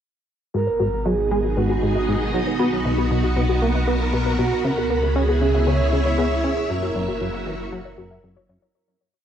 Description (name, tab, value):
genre	ambient, sequencer-driven space music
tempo	117 BPM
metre	4/4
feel	straight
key	G# minor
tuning	A4 = 439 Hz
part	breathy flute-like synth lead	melody	0.5-8.2 s	F#4 to C#5	-26 LUFS	right 6 dB	wide subtle chorus, cassette tape, plate reverb, tape echo
part	string machine, full ensemble	sustained chords	0.5-8.7 s	A#3 to E5	-24 LUFS	equal	ensemble chorus, cassette tape, plate reverb
part	soft round pluck	arpeggios	0.5-8.7 s	F#4 to E5	-30 LUFS	left 8 dB	chorus, auto-pan, vintage 12-bit sampler grit, cassette tape, plate reverb, tape echo
part	plucky analog bass	riff	0.5-8.6 s	F#2 to C#4	-24 LUFS	equal	wide subtle chorus, cassette tape, tape echo
part	warm sub bass	bass	0.5-8.7 s	F#1 to C#2	-24 LUFS	equal	none
room	wet studio reverb, RT60 0.5 s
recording	home recording on cassette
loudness	-19 LUFS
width	side -9 dB against mid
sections	0.5-8.7 A section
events	filter sweep on synth arpeggio sound 0.5-8.7; fade-out 6.0-8.7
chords	0.5 G#m7; 2.6 Bmaj7; 4.6 C#m7; 6.7 F#7